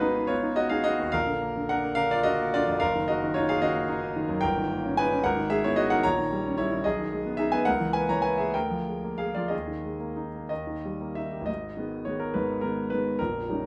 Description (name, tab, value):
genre	classical, romantic character piece for solo piano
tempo	60-76 BPM (dotted quarters)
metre	6/8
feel	rubato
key	Eb minor, G# minor from 4.4 s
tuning	A4 = 440 Hz
part	clear grand piano	solo	0.0-13.7 s	A#0 to A#5	-27 LUFS	equal	none
room	moderate large studio reverb, RT60 1.0 s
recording	none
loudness	-27 LUFS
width	mono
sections	0.0-11.5 A section; 11.5-13.7 B section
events	none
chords	0.0 Abm; 1.1 Bb; 2.8 Ebm/Gb; 4.4 D#7/G; 5.2 G#m; 6.0 D#7/A#; 6.8 G#m/B; 7.7 A#dim/C#; 8.5 A#7/D; 9.5 D#sus4; 10.5 D#; 11.5 G#m